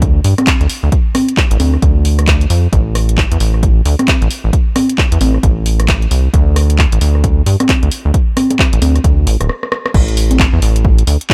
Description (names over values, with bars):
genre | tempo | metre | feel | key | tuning
UK garage, two-step garage | 133 BPM | 4/4 | swing 61% on 16ths | unclear | A4 = 440 Hz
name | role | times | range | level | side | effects
rubbery square bass | bass | 0.0-11.2 s | D1 to G2 | -14 LUFS | equal | tube saturation
electronic kick drum | drums | 0.0-11.3 s | none | -16 LUFS | equal | overdrive
garage drum kit | drums | 0.0-11.3 s | congas, crash cymbal, handclaps, hi-hat, rim click | -18 LUFS | equal | none
room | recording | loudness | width
little or no reverb | none | -12 LUFS | mono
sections
0.0-9.9 A section; 9.9-11.3 B section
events
drum fill 9.5-9.9; stop 9.5-9.9; drop 9.9-11.3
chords
none